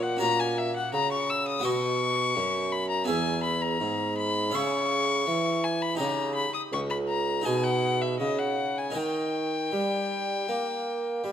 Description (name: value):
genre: classical, baroque-style sonata movement with continuo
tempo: 82 BPM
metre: 4/4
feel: rubato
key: unclear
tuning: A4 = 444 Hz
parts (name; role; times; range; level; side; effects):
- rich violin; melody; 0.0-11.3 s; D#5 to E6; -28 LUFS; left 5 dB; none
- harpsichord; accompaniment; 0.0-11.3 s; C#2 to E5; -32 LUFS; right 2 dB; none
- warm bassoon; bass; 0.0-11.3 s; C#2 to A#3; -30 LUFS; right 2 dB; none
room: moderate scoring stage reverb, RT60 1.6 s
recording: none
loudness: -25 LUFS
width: side -9 dB against mid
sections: 0.0-11.3 A section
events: none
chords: 0.2 F#/A#; 1.6 B; 3.1 E; 4.5 C#m; 6.0 D#7/C#; 7.5 G#m/B; 9.0 D#